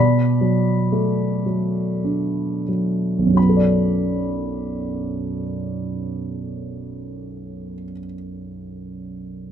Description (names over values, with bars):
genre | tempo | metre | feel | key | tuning
classical, lyrical solo piano | 28-44 BPM (dotted quarters) | 6/8 | rubato | B minor | A4 = 439 Hz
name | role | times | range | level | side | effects
dark baby grand piano | solo | 0.0-9.5 s | B1 to B5 | -20 LUFS | right 1 dB | none
room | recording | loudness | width
light reverb | dark, warm production | -19 LUFS | side -9 dB against mid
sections
0.0-3.4 A section; 3.4-7.6 B section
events
slowing down 0.0-3.4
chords
0.0 Bm7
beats
1.46 | 3.38 5.49